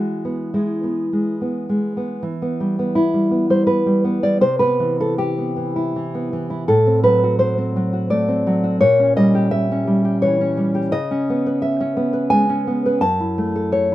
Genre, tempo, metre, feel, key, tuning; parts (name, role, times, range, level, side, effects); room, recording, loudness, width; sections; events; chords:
romantic piece for solo classical guitar; 67-89 BPM; 3/4; rubato; E minor; A4 = 439 Hz
nylon-string guitar; solo; 0.0-13.9 s; F#2 to A5; -16 LUFS; equal
light reverb; minimal, uncompressed stereo recording; -16 LUFS; side -15 dB against mid
0.0-2.2 A section; 2.2-13.9 B section
0.0 E; 2.2 Em; 4.4 Cmaj7; 6.7 F#dim/A; 8.8 A#dim7; 10.9 C#m7; 13.0 F#m7